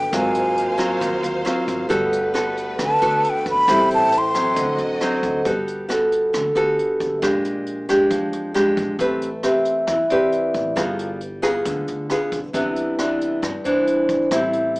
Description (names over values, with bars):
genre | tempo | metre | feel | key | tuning
bossa nova | 135 BPM | 4/4 | straight | G major | A4 = 439 Hz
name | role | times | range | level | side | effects
breathy concert flute | melody | 0.0-4.8 s | G5 to C6 | -18 LUFS | equal | none
nylon-string guitar | accompaniment | 0.0-14.8 s | G2 to B4 | -21 LUFS | equal | none
vibraphone with medium mallets | accompaniment | 0.0-14.3 s | Gb4 to G5 | -22 LUFS | equal | none
warm symphonic violin section | sustained chords | 0.0-5.4 s | A3 to F5 | -30 LUFS | equal | none
upright bass | bass | 0.0-14.8 s | G1 to G2 | -35 LUFS | equal | none
jazz brush drum kit | drums | 0.1-14.8 s | hi-hat, kick drum, rim click | -30 LUFS | equal | none
room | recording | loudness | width
light reverb | small speaker sound | -18 LUFS | side -24 dB against mid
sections
0.0-5.4 A section; 5.4-14.8 A section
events
flute solo 0.0-5.4; vibraphone solo 5.4-14.8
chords
0.1 Ab13; 1.9 Gmaj9; 3.7 Am7; 4.6 D7b9; 5.4 Gmaj9; 7.2 Bb6; 9.0 Am9; 10.8 G7b9; 12.5 Cmaj9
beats
| 0.13 0.58 1.02 1.46 | 1.90 2.35 2.79 3.23 | 3.68 4.12 4.56 5.00 | 5.45 5.89 6.33 6.78 | 7.22 7.66 8.11 8.55 | 8.99 9.44 9.88 10.32 | 10.77 11.21 11.65 12.10 | 12.54 12.98 13.43 13.87 | 14.31 14.76